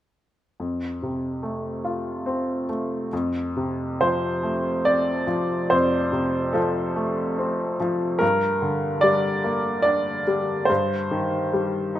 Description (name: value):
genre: classical, lyrical solo piano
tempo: 71 BPM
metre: 3/4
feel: rubato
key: unclear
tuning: A4 = 440 Hz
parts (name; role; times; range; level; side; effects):
- clear upright piano; solo; 0.6-12.0 s; F2 to D5; -21 LUFS; equal; none
room: moderate recital hall reverb, RT60 1.5 s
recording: minimal, uncompressed stereo recording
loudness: -21 LUFS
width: side -12 dB against mid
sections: 0.6-3.1 A section; 3.1-12.0 B section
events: none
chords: 0.6 F; 8.2 Gm; 10.7 Cm/G